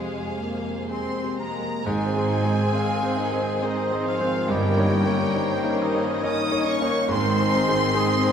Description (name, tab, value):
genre	classical, romantic movement for piano and orchestra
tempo	58-71 BPM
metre	3/4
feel	rubato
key	Ab major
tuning	A4 = 440 Hz
part	clear concert grand piano	melody	0.0-8.3 s	F2 to Db5	-25 LUFS	equal	none
part	warm symphonic violin section	melody	0.0-8.3 s	Eb5 to Eb6	-30 LUFS	left 1 dB	none
part	warm symphonic violin section	second line	0.0-8.3 s	G3 to C5	-33 LUFS	left 1 dB	none
part	rich symphonic viola section	accompaniment	0.0-8.3 s	Eb3 to Db4	-33 LUFS	left 1 dB	none
part	clear chamber cello section	bass	0.0-7.8 s	F2 to Ab2	-30 LUFS	right 2 dB	none
part	mellow cor anglais	second line	0.9-8.3 s	Eb4 to Eb5	-32 LUFS	right 4 dB	none
part	dark French horn section	sustained chords	0.9-8.3 s	Eb3 to Eb4	-30 LUFS	left 4 dB	none
part	mellow clarinet	second line	1.9-8.3 s	Ab4 to F5	-34 LUFS	equal	none
part	mellow tuba	bass	1.9-7.8 s	G1 to Ab1	-32 LUFS	right 3 dB	none
part	warm symphonic double bass section	bass	1.9-7.8 s	G1 to Ab1	-33 LUFS	right 3 dB	none
room	wet concert hall reverb, RT60 1.8 s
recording	none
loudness	-21 LUFS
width	side -8 dB against mid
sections	0.0-1.9 A section; 1.9-8.3 B section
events	none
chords	0.0 Fm; 1.9 Ab; 4.5 Eb7/G; 7.1 Ab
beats	0.89 | 1.87 2.75 3.63 | 4.50 5.37 6.25 | 7.11 7.96